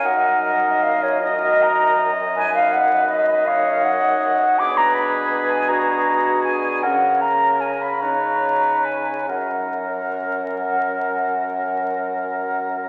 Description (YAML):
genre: classical, slow romantic movement for wind quintet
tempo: 44-55 BPM (dotted quarters)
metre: 12/8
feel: rubato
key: F# major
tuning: A4 = 440 Hz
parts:
  - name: mellow concert flute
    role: melody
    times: 0.0-12.9 s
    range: C#5 to D6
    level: -22 LUFS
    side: equal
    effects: none
  - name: clear oboe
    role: second line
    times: 0.0-12.9 s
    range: G#4 to D#5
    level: -28 LUFS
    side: equal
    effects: none
  - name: warm French horn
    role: accompaniment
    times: 0.0-12.9 s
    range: C#4 to F#4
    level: -34 LUFS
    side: equal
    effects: none
  - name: warm clarinet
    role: accompaniment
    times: 0.0-12.9 s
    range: F#4 to D#5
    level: -29 LUFS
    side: equal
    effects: none
  - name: warm bassoon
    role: bass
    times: 0.1-12.9 s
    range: F#2 to C#3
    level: -30 LUFS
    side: equal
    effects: none
room: wet concert hall reverb, RT60 2.1 s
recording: very old 78 rpm record, vinyl crackle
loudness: -20 LUFS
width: mono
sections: 0.0-12.9 A section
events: none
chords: 0.0 D#m/F#; 2.4 B/F#; 4.6 G#m7b5/B; 6.8 G#9sus4/C# (rootless); 8.0 C#sus2; 9.3 F#